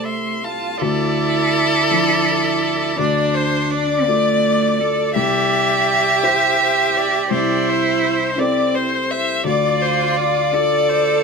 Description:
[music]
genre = neoclassical piano and strings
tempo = 56 BPM (dotted quarters)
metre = 6/8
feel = rubato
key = D minor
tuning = A4 = 441 Hz
[part]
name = rich violin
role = melody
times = 0.0-11.2 s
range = A4 to C6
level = -19 LUFS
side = left 5 dB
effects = none
[part]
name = rich cello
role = second line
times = 0.0-11.2 s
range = A3 to A4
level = -19 LUFS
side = right 6 dB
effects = tape echo
[part]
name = clear viola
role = accompaniment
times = 0.0-11.2 s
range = C5 to F5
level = -25 LUFS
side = right 2 dB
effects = none
[part]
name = dark upright piano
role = accompaniment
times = 0.0-11.2 s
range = C2 to E5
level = -24 LUFS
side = left 4 dB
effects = none
[sound]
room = moderate studio reverb, RT60 0.6 s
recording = none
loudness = -15 LUFS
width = side -5 dB against mid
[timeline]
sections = 0.8-11.2 A section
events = none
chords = 0.0 Am/C; 0.8 Dm; 5.2 C; 7.3 Am/C; 9.4 Dm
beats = | 0.81 1.90 | 2.99 4.07 | 5.16 6.24 | 7.31 8.38 | 9.45 10.52

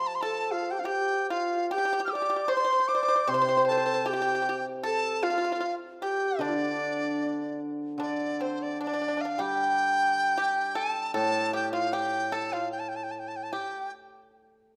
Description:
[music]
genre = chinese traditional, Chinese chamber ensemble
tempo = 76 BPM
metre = 2/4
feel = rubato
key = D yu mode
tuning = A4 = 440 Hz
[part]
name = mellow dizi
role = melody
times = 0.0-13.9 s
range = C5 to F6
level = -30 LUFS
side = equal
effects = none
[part]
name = hammered dulcimer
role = accompaniment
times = 0.0-13.5 s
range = A2 to G3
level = -36 LUFS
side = equal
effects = none
[part]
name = bright reedy xiao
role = second line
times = 0.2-7.6 s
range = D4 to D5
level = -34 LUFS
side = equal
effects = none
[part]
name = pipa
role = second line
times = 0.2-13.9 s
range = C4 to C5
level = -36 LUFS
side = equal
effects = none
[sound]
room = moderate recital hall reverb, RT60 1.7 s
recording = none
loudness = -28 LUFS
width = mono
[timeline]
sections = 0.0-8.0 A section; 8.0-14.8 B section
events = none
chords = none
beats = | 0.12 0.92 | 1.72 2.51 | 3.29 4.07 | 4.84 5.62 | 6.41 7.21 | 8.01 8.81 | 9.60 10.38 | 11.16 11.94 | 12.73 13.52

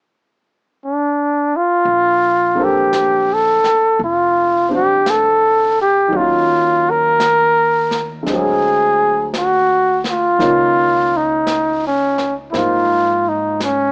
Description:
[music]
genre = jazz ballad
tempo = 56 BPM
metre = 4/4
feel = swing 67% on 8ths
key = Bb major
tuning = A4 = 442 Hz
[part]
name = warm flugelhorn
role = melody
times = 0.8-13.9 s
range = Db4 to Bb4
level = -16 LUFS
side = equal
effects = none
[part]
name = upright bass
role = bass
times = 1.8-13.9 s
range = F1 to Ab2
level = -34 LUFS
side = equal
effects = none
[part]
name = jazz brush drum kit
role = drums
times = 1.9-13.9 s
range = brushed snare drum, hi-hat, snare drum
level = -31 LUFS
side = equal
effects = none
[part]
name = warm upright piano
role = accompaniment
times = 2.5-13.9 s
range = D3 to C5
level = -25 LUFS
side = equal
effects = none
[sound]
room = little or no reverb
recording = worn, warbling old tape, cassette tape, warbly pitch drift, small speaker sound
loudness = -15 LUFS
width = mono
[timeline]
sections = 0.0-1.8 A section; 1.8-13.9 B section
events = none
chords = 0.0 N.C.; 1.8 Bbmaj9; 6.1 Ebm9; 8.3 D7#11; 10.4 Db69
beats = 0.77 | 1.85 2.92 3.99 5.06 | 6.13 7.20 8.27 9.34 | 10.40 11.47 12.54 13.60

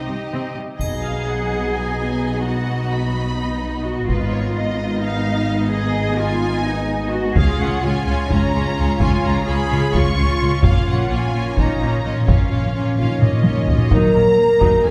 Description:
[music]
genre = cinematic, epic orchestral film score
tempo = 256 BPM (eighths)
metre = 7/8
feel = straight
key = unclear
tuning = A4 = 440 Hz
[part]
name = warm symphonic violin section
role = melody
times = 0.0-14.9 s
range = Cb5 to Db6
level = -31 LUFS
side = equal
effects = none
[part]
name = rich symphonic violin section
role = second line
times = 0.0-14.9 s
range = D#4 to Bb5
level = -32 LUFS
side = equal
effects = none
[part]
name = rich studio viola section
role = accompaniment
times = 0.0-14.9 s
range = Eb3 to Eb4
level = -29 LUFS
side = equal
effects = none
[part]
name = mellow French horn section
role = sustained chords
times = 0.0-14.9 s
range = Cb4 to Bb4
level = -26 LUFS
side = equal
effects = none
[part]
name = rich symphonic cello section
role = bass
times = 0.1-14.9 s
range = C3 to Ab4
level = -28 LUFS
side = equal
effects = none
[part]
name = rich symphonic double bass section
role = bass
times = 0.8-14.9 s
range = Ab1 to Eb2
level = -25 LUFS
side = equal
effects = none
[part]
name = taiko ensemble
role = drums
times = 0.8-14.9 s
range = none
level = -21 LUFS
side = equal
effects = none
[part]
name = triangle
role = percussion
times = 0.8-1.7 s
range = none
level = -44 LUFS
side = equal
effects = none
[part]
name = timpani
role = percussion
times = 10.6-13.9 s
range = Bb2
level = -26 LUFS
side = equal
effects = none
[part]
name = bright trombone section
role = sustained chords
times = 13.9-14.1 s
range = Gb3 to Eb4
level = -33 LUFS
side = equal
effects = none
[sound]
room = wet scoring stage reverb, RT60 1.6 s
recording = recorded in a church or concert hall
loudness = -19 LUFS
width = mono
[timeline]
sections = 0.8-13.9 A section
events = timpani fill 10.6-13.9; drum fill 13.2-13.9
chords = 0.0 Cm; 0.8 B; 4.1 Abm; 7.4 Db; 10.6 Bbm; 13.9 Ebm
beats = 0.09 0.33 0.56 | 0.80 1.03 1.26 1.50 1.73 1.97 2.20 | 2.44 2.67 2.90 3.14 3.37 3.61 3.84 | 4.08 4.31 4.55 4.78 5.01 5.25 5.48 | 5.72 5.95 6.19 6.42 6.66 6.89 7.12 | 7.36 7.59 7.83 8.06 8.30 8.53 8.77 | 9.00 9.23 9.47 9.70 9.94 10.17 10.40 | 10.64 10.87 11.11 11.34 11.58 11.81 12.05 | 12.28 12.52 12.75 12.98 13.22 13.45 13.69 | 13.92 14.15 14.39 14.62 14.86

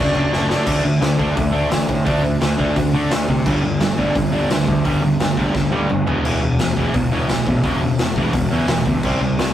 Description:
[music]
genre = punk rock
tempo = 172 BPM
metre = 4/4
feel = straight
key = unclear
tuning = A4 = 440 Hz
[part]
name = sludgy distorted guitar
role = riff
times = 0.0-9.5 s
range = E2 to D4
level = -19 LUFS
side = equal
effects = overdrive
[part]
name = fuzz picked electric bass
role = bass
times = 0.0-9.5 s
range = E1 to D3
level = -21 LUFS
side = equal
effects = overdrive
[part]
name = raw garage drum kit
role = drums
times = 0.1-9.5 s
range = crash cymbal, hi-hat, kick drum, snare drum, toms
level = -21 LUFS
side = equal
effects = none
[sound]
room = light reverb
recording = rough rehearsal-room recording, tube saturation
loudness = -16 LUFS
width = side -11 dB against mid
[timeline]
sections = 0.7-9.5 A section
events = drum fill 0.3-0.7, 5.5-6.2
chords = 0.0 D/F#; 0.7 D5; 3.5 G5; 6.1 E5; 9.0 C5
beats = 0.32 | 0.67 1.02 1.36 1.71 | 2.06 2.41 2.76 3.11 | 3.46 3.80 4.15 4.50 | 4.85 5.20 5.54 5.89 | 6.24 6.59 6.94 7.29 | 7.64 7.99 8.33 8.68 | 9.03 9.38

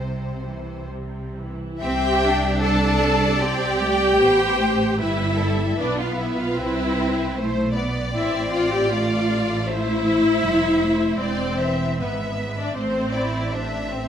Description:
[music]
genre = classical, slow romantic movement for string orchestra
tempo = 77 BPM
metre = 4/4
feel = uneven beats, rubato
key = C major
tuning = A4 = 440 Hz
[part]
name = warm studio violin section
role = melody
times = 0.0-14.1 s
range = A4 to E5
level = -29 LUFS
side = left 2 dB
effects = none
[part]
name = warm symphonic violin section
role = second line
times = 0.0-13.9 s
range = C4 to A5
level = -28 LUFS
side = left 2 dB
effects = none
[part]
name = rich symphonic viola section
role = accompaniment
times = 0.0-13.9 s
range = E3 to A4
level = -23 LUFS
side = equal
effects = none
[part]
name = rich symphonic cello section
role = bass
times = 0.0-14.1 s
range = C3 to E4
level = -26 LUFS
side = right 1 dB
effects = none
[part]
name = rich symphonic double bass section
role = bass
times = 0.0-14.1 s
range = E1 to C2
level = -27 LUFS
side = right 2 dB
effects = none
[sound]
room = moderate scoring stage reverb, RT60 1.6 s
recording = none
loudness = -19 LUFS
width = side -9 dB against mid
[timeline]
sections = 0.0-1.8 A section; 1.8-14.1 B section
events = none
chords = 0.0 C; 5.0 G69; 6.6 C; 8.1 Am7; 11.2 E7; 12.8 Am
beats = 0.00 0.91 | 1.80 2.63 3.41 4.20 | 5.00 5.79 6.57 7.34 | 8.13 8.90 9.68 10.43 | 11.19 11.99 12.77 13.53

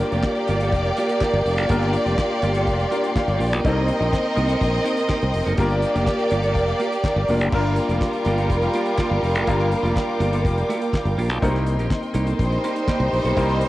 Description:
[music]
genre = disco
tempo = 124 BPM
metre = 4/4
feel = straight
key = G minor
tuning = A4 = 442 Hz
[part]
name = warm studio violin section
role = second line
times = 0.0-13.7 s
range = G3 to Eb5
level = -22 LUFS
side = equal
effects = cassette tape, tape echo
[part]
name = clean electric guitar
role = accompaniment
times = 0.0-13.7 s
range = Bb3 to A4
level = -30 LUFS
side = right 3 dB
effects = cassette tape
[part]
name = clear concert grand piano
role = accompaniment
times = 0.0-13.7 s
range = G3 to F5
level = -29 LUFS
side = left 3 dB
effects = cassette tape
[part]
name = rich studio string section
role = sustained chords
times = 0.0-13.7 s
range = Bb4 to D6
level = -32 LUFS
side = left 1 dB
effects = cassette tape
[part]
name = modern bright fingered electric bass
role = bass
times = 0.1-13.6 s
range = F1 to C2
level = -22 LUFS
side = equal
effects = none
[part]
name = damped 70s drum kit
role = drums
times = 0.1-13.7 s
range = crash cymbal, handclaps, hi-hat, kick drum, snare drum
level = -26 LUFS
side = equal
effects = cassette tape
[sound]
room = light reverb, small room ambience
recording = home recording on cassette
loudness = -18 LUFS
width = side -16 dB against mid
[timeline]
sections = 0.0-7.5 A section; 7.5-13.7 A section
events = grand piano fill 2.7-3.6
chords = 0.0 Gm7; 3.6 Cm7; 5.6 Gm7; 11.4 Cm7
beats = 0.25 0.73 1.22 | 1.70 2.19 2.67 3.16 | 3.64 4.13 4.61 5.10 | 5.58 6.07 6.55 7.04 | 7.53 8.01 8.50 8.98 | 9.47 9.96 10.45 10.93 | 11.42 11.90 12.39 12.88 | 13.36

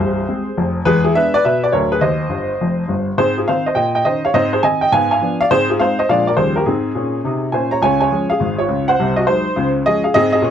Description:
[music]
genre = jazz, stride piano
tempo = 206 BPM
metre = 4/4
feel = swing 64% on 8ths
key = Ab major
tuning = A4 = 439 Hz
[part]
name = clear upright piano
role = solo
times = 0.0-10.5 s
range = C1 to Bb5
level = -14 LUFS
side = equal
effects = none
[sound]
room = light reverb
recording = worn, warbling old tape, cassette tape, warbly pitch drift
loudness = -14 LUFS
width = side -9 dB against mid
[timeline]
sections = 0.0-7.8 A section; 7.8-10.5 B section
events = upright piano fill 2.3-3.2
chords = 0.0 Fm; 0.9 E7; 2.0 Cm; 2.6 Eb; 3.2 Ab; 3.8 Eb5/Bb; 4.3 Ab; 4.9 Abdim7; 5.5 Ab; 6.1 Bb7; 6.4 Eb9; 6.7 Ab; 7.8 Db; 9.0 Ab7/C; 9.6 Db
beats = 0.27 0.56 | 0.85 1.14 1.44 1.73 | 2.02 2.31 2.60 2.89 | 3.18 3.47 3.76 4.05 | 4.34 4.63 4.92 5.21 | 5.50 5.79 6.08 6.37 | 6.66 6.95 7.24 7.54 | 7.83 8.12 8.41 8.70 | 8.99 9.28 9.57 9.86 | 10.15 10.44

